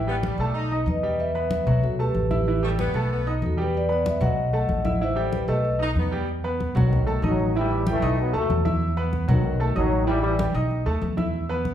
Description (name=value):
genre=latin, salsa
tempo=189 BPM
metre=4/4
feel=straight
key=unclear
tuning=A4 = 440 Hz
part: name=vibraphone with soft mallets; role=melody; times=0.0-5.8 s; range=F#4 to F#5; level=-26 LUFS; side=left 1 dB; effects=none
part: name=clear concert grand piano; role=accompaniment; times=0.0-11.7 s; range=E3 to E6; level=-28 LUFS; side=right 1 dB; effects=none
part: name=upright bass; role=bass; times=0.0-11.7 s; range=A1 to E2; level=-26 LUFS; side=equal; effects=none
part: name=clear saxophone section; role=second line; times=0.1-3.3, 5.8-6.3 s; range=G3 to D#4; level=-31 LUFS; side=left 1 dB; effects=none
part: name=congas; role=percussion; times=0.1-11.7 s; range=none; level=-28 LUFS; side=left 1 dB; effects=none
part: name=mellow trombone section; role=melody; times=6.8-10.5 s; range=B2 to B3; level=-26 LUFS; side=left 2 dB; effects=none
room=wet large studio reverb, RT60 1.1 s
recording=heard from further back in the room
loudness=-21 LUFS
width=side -10 dB against mid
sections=0.0-6.3 A section; 6.3-11.7 B section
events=none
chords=0.0 Asus2; 0.5 B7; 1.2 Em; 1.8 B5; 2.5 Asus2; 3.1 B7; 3.7 Em; 4.4 B7; 5.0 Am9; 5.6 B7; 6.3 E5; 6.9 B7; 7.5 Asus2; 8.2 B7; 8.8 E5; 9.4 B7; 10.1 Asus2; 10.7 B7